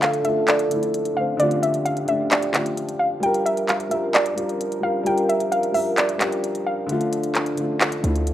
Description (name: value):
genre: hip hop, trap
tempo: 131 BPM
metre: 4/4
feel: half-time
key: D minor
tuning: A4 = 440 Hz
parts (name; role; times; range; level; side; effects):
- soft round pluck; melody; 0.0-6.8 s; D5 to G5; -23 LUFS; equal; chorus, low-pass filter, digital delay
- dark baby grand piano; accompaniment; 0.0-8.3 s; D3 to Bb4; -25 LUFS; left 2 dB; low-pass filter
- mellow brass ensemble; sustained chords; 0.0-8.3 s; D3 to Bb4; -27 LUFS; right 2 dB; none
- trap drum kit; drums; 0.0-8.3 s; handclaps, hi-hat; -23 LUFS; equal; none
- hard-hitting 808-style bass; bass; 8.0-8.3 s; D2; -20 LUFS; equal; none
room: moderate plate reverb, RT60 1.9 s, digital ambience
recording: rough home demo mix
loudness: -19 LUFS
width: side -12 dB against mid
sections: 0.0-8.3 A section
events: break 0.0-6.9; kick muted 6.9-7.8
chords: 0.0 Dm; 3.2 Gm7; 6.9 Dm